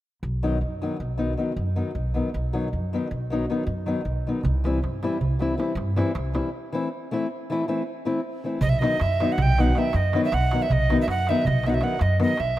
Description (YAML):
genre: balkan folk, Balkan wedding band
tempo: 315 BPM (eighths)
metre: 11/8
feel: straight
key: B phrygian dominant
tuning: A4 = 440 Hz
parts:
  - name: upright bass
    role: bass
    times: 0.2-12.6 s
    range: B1 to G2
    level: -25 LUFS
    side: equal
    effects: none
  - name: nylon-string guitar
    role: accompaniment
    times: 0.4-12.3 s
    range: D#3 to E4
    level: -26 LUFS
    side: left 2 dB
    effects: none
  - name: darbuka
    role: percussion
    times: 4.4-12.6 s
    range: none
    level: -28 LUFS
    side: right 2 dB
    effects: none
  - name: breathy alto recorder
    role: melody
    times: 8.6-12.6 s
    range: D#5 to G5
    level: -25 LUFS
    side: right 4 dB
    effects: none
room: light reverb, small room ambience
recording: rough home demo mix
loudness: -22 LUFS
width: side -14 dB against mid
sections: 0.2-8.6 A section; 8.6-12.6 B section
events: break 6.5-8.6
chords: 0.2 B; 4.4 C; 6.5 Am; 8.6 B